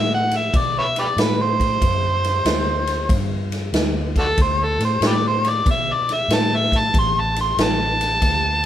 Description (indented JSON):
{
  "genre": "electric blues shuffle",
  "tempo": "94 BPM",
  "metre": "4/4",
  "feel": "swing 66% on 8ths",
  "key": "unclear",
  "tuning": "A4 = 441 Hz",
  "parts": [
    { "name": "overdriven harmonica", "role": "melody", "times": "0.0-8.7 s", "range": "D4 to C6", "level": "-20 LUFS", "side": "equal", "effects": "none" },
    { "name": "vintage muted fingered electric bass", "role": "bass", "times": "0.0-8.7 s", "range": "A1 to B2", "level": "-24 LUFS", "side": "equal", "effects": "none" },
    { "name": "swinging big-band drum kit", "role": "drums", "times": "0.3-8.7 s", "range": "kick drum, ride cymbal, snare drum", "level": "-21 LUFS", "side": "equal", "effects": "none" }
  ],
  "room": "light reverb",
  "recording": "band playing live in one room",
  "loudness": "-17 LUFS",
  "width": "side -11 dB against mid",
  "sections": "0.0-8.7 A section",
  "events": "harmonica solo 0.0-8.7",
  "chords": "0.0 D5; 6.9 Amadd11",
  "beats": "0.54 1.18 | 1.82 2.46 3.10 3.74 | 4.38 5.02 5.66 6.30 | 6.94 7.58 8.22"
}